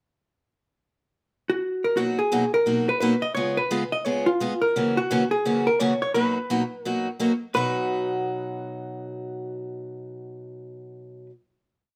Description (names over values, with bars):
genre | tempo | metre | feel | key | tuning
country | 172 BPM | 4/4 | swing 64% on 8ths | B major | A4 = 441 Hz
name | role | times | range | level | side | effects
vintage hollow-body jazz guitar | melody | 1.5-11.3 s | E#4 to D#5 | -26 LUFS | equal | none
picked steel-string acoustic guitar | accompaniment | 2.0-11.3 s | F#2 to G#4 | -28 LUFS | equal | none
room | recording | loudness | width
moderate studio reverb, RT60 0.8 s | none | -24 LUFS | mono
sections
0.6-2.0 pickup bar; 2.0-7.5 A section; 7.5-10.3 final chord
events
none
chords
0.6 N.C.; 2.0 Bmaj7; 3.4 C#7; 4.8 F#7; 6.2 Bmaj7; 7.5 B